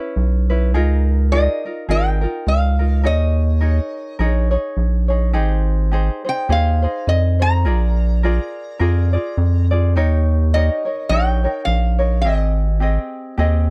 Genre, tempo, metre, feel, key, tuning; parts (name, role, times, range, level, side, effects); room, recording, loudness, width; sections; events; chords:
Hawaiian; 104 BPM; 4/4; swing 57% on 8ths; Ab major; A4 = 440 Hz
lap resonator guitar; melody; 0.0-13.3 s; C#5 to Bb5; -25 LUFS; equal
tenor ukulele; accompaniment; 0.0-13.7 s; C4 to Eb5; -27 LUFS; equal
rubbery square bass; bass; 0.2-13.7 s; Ab1 to F2; -18 LUFS; equal
little or no reverb; dry, close 1970s-style studio recording; -18 LUFS; mono
0.0-13.7 A section
0.0 E5; 0.7 Db69; 3.0 Eb7sus4; 5.3 Abmaj7; 7.7 Bb7; 9.9 Eb7; 12.2 Abmaj7